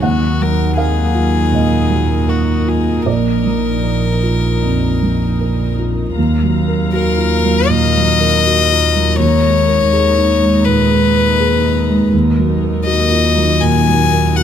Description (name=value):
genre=neoclassical piano and strings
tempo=80 BPM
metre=4/4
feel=rubato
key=Eb minor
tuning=A4 = 440 Hz
part: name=rich violin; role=melody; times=0.0-14.4 s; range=Gb4 to Ab5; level=-17 LUFS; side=left 6 dB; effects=none
part: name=felt-muted upright piano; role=accompaniment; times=0.0-14.4 s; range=Bb1 to Gb5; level=-15 LUFS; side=right 3 dB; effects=none
part: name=warm chamber string section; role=sustained chords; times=0.0-14.4 s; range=Eb3 to Bb5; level=-23 LUFS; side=equal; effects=none
part: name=rich double bass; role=bass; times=0.0-14.4 s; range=Bb1 to Eb2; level=-18 LUFS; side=left 1 dB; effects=none
room=light reverb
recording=none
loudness=-12 LUFS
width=side -9 dB against mid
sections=0.0-6.2 A section; 6.2-14.4 B section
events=none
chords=0.0 Ebmadd9; 3.1 Bb; 6.2 Ebmadd9; 9.2 Abmadd9/Eb; 12.1 Ebmadd9